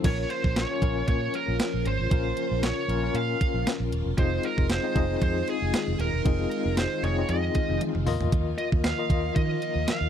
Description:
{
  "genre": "1980s-style pop",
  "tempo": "116 BPM",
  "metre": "4/4",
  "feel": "swing 55% on 16ths",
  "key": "unclear",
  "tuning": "A4 = 440 Hz",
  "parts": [
    { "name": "tine electric piano", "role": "accompaniment", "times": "0.0-10.1 s", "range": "C4 to Eb5", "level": "-30 LUFS", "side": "left 11 dB", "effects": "fast tremolo" },
    { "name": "string machine, violins", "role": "sustained chords", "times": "0.0-10.1 s", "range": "Db3 to F4", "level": "-35 LUFS", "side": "right 1 dB", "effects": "phaser, ensemble chorus" },
    { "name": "vintage muted fingered electric bass", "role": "bass", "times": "0.0-10.1 s", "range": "Eb1 to Eb3", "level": "-29 LUFS", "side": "right 1 dB", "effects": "none" },
    { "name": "clean 12-bit digital drum machine", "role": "drums", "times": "0.0-10.0 s", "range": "crash cymbal, hi-hat, kick drum, snare drum, tambourine, toms", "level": "-26 LUFS", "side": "right 1 dB", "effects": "overdrive" },
    { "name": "high-gain lead guitar", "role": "melody", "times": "0.1-10.1 s", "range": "Ab4 to F5", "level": "-30 LUFS", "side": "right 4 dB", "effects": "distortion, slapback echo" }
  ],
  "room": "little or no reverb",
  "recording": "dry, close 1970s-style studio recording",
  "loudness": "-24 LUFS",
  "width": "side -9 dB against mid",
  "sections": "0.0-10.1 A section",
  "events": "drum fill 7.8-8.3",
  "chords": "0.0 Bbm; 4.2 Fm7; 8.1 Ebsus2",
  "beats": "| 0.05 0.56 1.08 1.60 | 2.12 2.63 3.15 3.67 | 4.19 4.70 5.22 5.74 | 6.25 6.77 7.29 7.81 | 8.32 8.84 9.36 9.88"
}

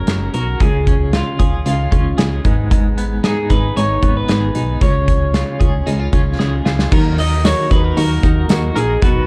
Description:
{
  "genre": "jangly indie pop",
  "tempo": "114 BPM",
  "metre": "4/4",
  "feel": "straight",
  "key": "unclear",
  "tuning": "A4 = 440 Hz",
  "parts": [
    { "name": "electric guitar through a small old amp", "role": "melody", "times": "0.0-9.3 s", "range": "E#4 to D#5", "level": "-24 LUFS", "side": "equal", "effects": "none" },
    { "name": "fingerpicked steel-string acoustic guitar", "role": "accompaniment", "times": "0.0-9.3 s", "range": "G#2 to A#4", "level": "-27 LUFS", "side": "equal", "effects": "none" },
    { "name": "twelve-string electric guitar", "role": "arpeggios", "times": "0.0-9.3 s", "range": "G#2 to B4", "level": "-26 LUFS", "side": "equal", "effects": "tremolo" },
    { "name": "solid FM bass", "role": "bass", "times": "0.0-9.3 s", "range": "F#1 to D#2", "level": "-21 LUFS", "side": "equal", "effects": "none" },
    { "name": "loose indie drum kit", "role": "drums", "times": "0.1-9.1 s", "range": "crash cymbal, hi-hat, kick drum, snare drum", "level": "-19 LUFS", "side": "equal", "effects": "none" },
    { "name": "overdriven combo organ", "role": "accompaniment", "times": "6.9-9.3 s", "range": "A#3 to B4", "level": "-30 LUFS", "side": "equal", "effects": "none" },
    { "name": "tambourine", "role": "percussion", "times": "6.9-9.1 s", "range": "none", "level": "-42 LUFS", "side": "equal", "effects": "none" }
  ],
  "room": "little or no reverb",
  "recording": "dark, warm production",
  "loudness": "-16 LUFS",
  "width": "mono",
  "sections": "0.0-6.9 A section; 6.9-9.3 B section",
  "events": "drum fill 6.4-6.9",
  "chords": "0.0 F#add9; 0.6 C#; 2.4 G#m; 4.8 C#; 6.9 D#m",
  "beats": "0.07 | 0.60 1.13 1.66 2.18 | 2.71 3.24 3.76 4.29 | 4.82 5.34 5.87 6.39 | 6.92 7.45 7.97 8.50 | 9.02"
}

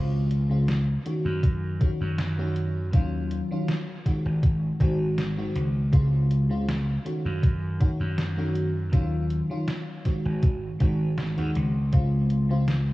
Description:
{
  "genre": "vaporwave",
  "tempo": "80 BPM",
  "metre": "4/4",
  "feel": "straight",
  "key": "Db major",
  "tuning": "A4 = 440 Hz",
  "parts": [
    { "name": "FM electric piano with soft pad layer", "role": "accompaniment", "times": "0.0-12.7 s", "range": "Db3 to Gb4", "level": "-27 LUFS", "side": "equal", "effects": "wide subtle chorus" },
    { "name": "gritty slap bass", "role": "bass", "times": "0.0-12.9 s", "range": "Ab1 to Gb2", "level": "-26 LUFS", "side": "equal", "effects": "overdrive" },
    { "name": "detuned 8-bit digital drum machine", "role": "drums", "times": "0.3-12.8 s", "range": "hi-hat, snare drum", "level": "-32 LUFS", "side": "equal", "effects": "overdrive, gated reverb" },
    { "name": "electronic kick drum", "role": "drums", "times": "1.4-12.1 s", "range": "none", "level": "-22 LUFS", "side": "equal", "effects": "overdrive" }
  ],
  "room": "little or no reverb",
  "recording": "cassette tape, small room ambience",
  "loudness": "-23 LUFS",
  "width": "side -18 dB against mid",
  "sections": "0.0-12.9 A section",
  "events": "none",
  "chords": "0.0 Dbmaj7; 1.1 Gbm6; 2.9 Ebm9; 4.1 Ab7; 5.9 Dbmaj7; 7.1 Gbm6; 8.9 Ebm9; 10.1 Ab7; 11.9 Dbmaj7",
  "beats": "0.68 1.43 2.18 | 2.93 3.68 4.43 5.18 | 5.93 6.68 7.43 8.18 | 8.93 9.68 10.43 11.18 | 11.93 12.68"
}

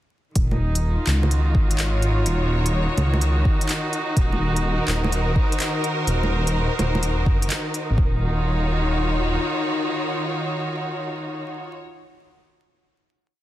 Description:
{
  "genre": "future garage",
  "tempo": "126 BPM",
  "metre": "4/4",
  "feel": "swing 67% on 16ths",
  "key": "Eb dorian",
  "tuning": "A4 = 440 Hz",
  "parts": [
    { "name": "clear studio string section", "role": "sustained chords", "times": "0.3-11.8 s", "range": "Eb3 to Db5", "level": "-24 LUFS", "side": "equal", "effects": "sidechain pumping" },
    { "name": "dark detuned saw bass", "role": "bass", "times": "0.4-9.4 s", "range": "Eb1 to Db2", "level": "-22 LUFS", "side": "equal", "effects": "sidechain pumping" },
    { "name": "electronic kick drum", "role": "drums", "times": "0.4-8.1 s", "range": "none", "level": "-20 LUFS", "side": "equal", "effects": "studio ambience" },
    { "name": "organic electronic drum kit", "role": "drums", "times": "0.4-7.9 s", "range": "bongos, handclaps, hi-hat", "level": "-28 LUFS", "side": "right 1 dB", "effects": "studio ambience" },
    { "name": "flickering grainy texture", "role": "texture", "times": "4.5-8.0 s", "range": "Bb4", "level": "-34 LUFS", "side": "equal", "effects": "built-in reverb" }
  ],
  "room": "light reverb, digital ambience",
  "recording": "dense, heavily limited modern master, vinyl crackle",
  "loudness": "-20 LUFS",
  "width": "side -14 dB against mid",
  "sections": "0.4-8.0 groove; 8.0-11.8 final chord",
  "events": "none",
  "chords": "0.4 Ebm7; 4.2 Ab7/Eb (rootless); 8.0 Ebm7",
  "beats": "| 0.36 0.83 1.31 1.79 | 2.26 2.74 3.22 3.69 | 4.17 4.64 5.12 5.60 | 6.07 6.55 7.03 7.50 | 7.98 8.45 8.93 9.41 | 9.88 10.36 10.84 11.31"
}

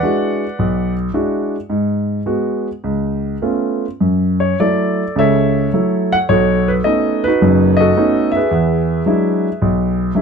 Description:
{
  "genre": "solo jazz",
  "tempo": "107 BPM",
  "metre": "4/4",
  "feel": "swing 69% on 8ths, rubato",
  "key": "E mixolydian",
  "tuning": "A4 = 441 Hz",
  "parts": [
    { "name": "warm grand piano", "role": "solo", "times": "0.0-10.2 s", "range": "F#1 to F#5", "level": "-14 LUFS", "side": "equal", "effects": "none" }
  ],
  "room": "little or no reverb",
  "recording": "close, detailed microphones",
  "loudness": "-14 LUFS",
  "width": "side -6 dB against mid",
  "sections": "0.0-10.2 A section",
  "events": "none",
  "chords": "0.0 E9; 1.7 G#m7; 2.8 C#aug7; 4.0 F#m7; 6.3 B9; 8.5 E9",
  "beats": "0.04 0.59 1.15 | 1.71 2.26 2.83 3.41 | 4.01 4.60 5.18 5.75 | 6.31 6.87 7.43 7.98 | 8.53 9.08 9.63 10.18"
}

